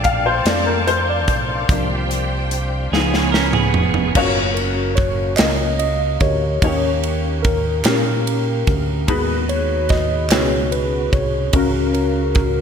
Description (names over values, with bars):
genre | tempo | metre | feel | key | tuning
slow gospel | 49 BPM (dotted quarters) | 6/8 | straight | F# major from 4.1 s | A4 = 439 Hz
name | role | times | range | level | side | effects
warm upright piano | accompaniment | 0.0-12.6 s | B2 to G5 | -22 LUFS | left 3 dB | ensemble chorus
bright tonewheel organ | sustained chords | 0.0-4.1 s | F3 to A4 | -28 LUFS | right 3 dB | slow rotary speaker, chorus vibrato
rich studio string section | sustained chords | 0.0-4.1 s | C5 to Cb6 | -28 LUFS | left 3 dB | none
fingered electric bass with an envelope filter | bass | 0.0-12.6 s | F1 to A#2 | -22 LUFS | right 1 dB | none
modern studio drum kit | drums | 0.0-12.5 s | crash cymbal, hi-hat, kick drum, ride cymbal, snare drum, toms | -20 LUFS | right 1 dB | gated reverb
clean electric guitar | second line | 2.9-4.1 s | Cb4 to Bb4 | -22 LUFS | right 9 dB | digital delay
mellow tine electric piano | melody | 4.5-12.6 s | C#4 to D#5 | -22 LUFS | equal | medium stereo tremolo, digital delay
group handclap | percussion | 5.4-10.7 s | none | -28 LUFS | right 4 dB | none
room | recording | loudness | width
moderate lush hall reverb, RT60 1.8 s, studio ambience | bright 1980s-style digital production | -16 LUFS | side -7 dB against mid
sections
0.0-4.1 A section; 4.1-12.6 B section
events
upright piano solo 0.0-4.1; drum fill 2.9-4.1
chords
0.0 Bbmaj7; 1.7 C7sus4; 2.9 Db7; 4.1 F#maj7; 6.6 D#7; 9.1 G#m7/D#; 10.3 C#9sus4; 11.5 F#/C#